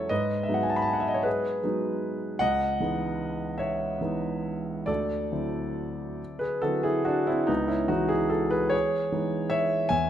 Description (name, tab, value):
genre	classical, impressionist solo piano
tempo	46-53 BPM (dotted quarters)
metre	6/8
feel	rubato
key	unclear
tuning	A4 = 439 Hz
part	warm concert grand piano	solo	0.0-10.1 s	C#2 to B5	-25 LUFS	equal	none
room	moderate scoring stage reverb, RT60 1.7 s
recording	close, detailed microphones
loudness	-25 LUFS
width	side -10 dB against mid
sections	0.0-10.1 A section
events	none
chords	0.1 G#m7; 2.4 C#m9; 4.9 D9; 7.5 C#m9